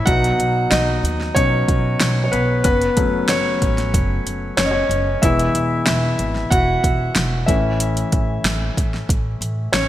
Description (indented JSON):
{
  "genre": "piano-driven pop",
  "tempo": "93 BPM",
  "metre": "4/4",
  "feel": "straight",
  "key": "E major",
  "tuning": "A4 = 437 Hz",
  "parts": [
    { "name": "clear concert grand piano", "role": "accompaniment", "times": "0.0-9.9 s", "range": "E3 to F#5", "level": "-19 LUFS", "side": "left 1 dB", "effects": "none" },
    { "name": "upright bass", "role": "bass", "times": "0.1-9.9 s", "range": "E1 to D#2", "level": "-22 LUFS", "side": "equal", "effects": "none" },
    { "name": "deep house drum kit", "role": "drums", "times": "0.1-9.9 s", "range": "hi-hat, kick drum, snare drum", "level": "-20 LUFS", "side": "equal", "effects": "gated reverb" }
  ],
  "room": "moderate plate reverb, RT60 2.5 s",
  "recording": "bright 1980s-style digital production",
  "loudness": "-16 LUFS",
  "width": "side -13 dB against mid",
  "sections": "0.0-9.9 A section",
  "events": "grand piano solo 0.0-9.9",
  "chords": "0.1 B; 2.7 F#m; 5.2 E; 7.5 A",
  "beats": "| 0.07 0.72 1.36 2.01 | 2.65 3.30 3.94 4.58 | 5.23 5.87 6.52 7.16 | 7.81 8.45 9.10 9.74"
}